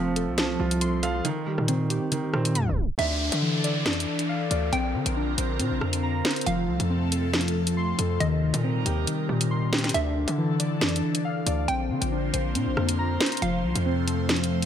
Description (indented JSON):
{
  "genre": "hip hop, drill",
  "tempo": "138 BPM",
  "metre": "4/4",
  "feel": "half-time",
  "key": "D minor",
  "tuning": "A4 = 440 Hz",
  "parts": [
    { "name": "felt-muted upright piano", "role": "accompaniment", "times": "0.0-3.0 s", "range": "Eb3 to F5", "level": "-28 LUFS", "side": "right 5 dB", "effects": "none" },
    { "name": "warbly lo-fi synth keys", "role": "arpeggios", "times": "0.0-14.7 s", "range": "Eb3 to C6", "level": "-28 LUFS", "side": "left 2 dB", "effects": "chorus, ping-pong delay" },
    { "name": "hard-hitting 808-style bass", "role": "bass", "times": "0.0-14.7 s", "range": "F1 to D3", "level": "-28 LUFS", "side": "equal", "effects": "none" },
    { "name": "drill drum kit", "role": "drums", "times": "0.2-14.7 s", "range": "crash cymbal, hi-hat, rim click, snare drum", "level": "-28 LUFS", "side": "equal", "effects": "none" },
    { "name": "hollow square pluck", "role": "second line", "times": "3.0-14.7 s", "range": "Eb5 to G5", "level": "-32 LUFS", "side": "right 3 dB", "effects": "chorus, ping-pong delay" },
    { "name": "airy breathy pad", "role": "sustained chords", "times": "3.3-14.7 s", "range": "C3 to C5", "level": "-31 LUFS", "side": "equal", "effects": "chorus, phaser" },
    { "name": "downlifter", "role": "sound effects", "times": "3.0-6.5 s", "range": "none", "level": "-34 LUFS", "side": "equal", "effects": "none" }
  ],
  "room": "light reverb, digital ambience",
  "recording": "tape stop",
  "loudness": "-23 LUFS",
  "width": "side -9 dB against mid",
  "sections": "0.0-3.0 A section; 3.0-14.7 B section",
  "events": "tape stop 2.6-3.0",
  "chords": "0.0 F; 1.2 Eb6; 3.0 Dmadd9; 4.7 Bbadd9; 6.5 F; 8.2 Eb6; 9.9 Dmadd9; 11.7 Bbadd9; 13.4 F",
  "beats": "0.38 0.81 | 1.25 1.68 2.12 2.55 | 2.99 3.42 3.86 4.29 | 4.73 5.16 5.60 6.03 | 6.47 6.90 7.33 7.77 | 8.21 8.64 9.07 9.51 | 9.94 10.38 10.81 11.25 | 11.68 12.12 12.55 12.99 | 13.42 13.86 14.29"
}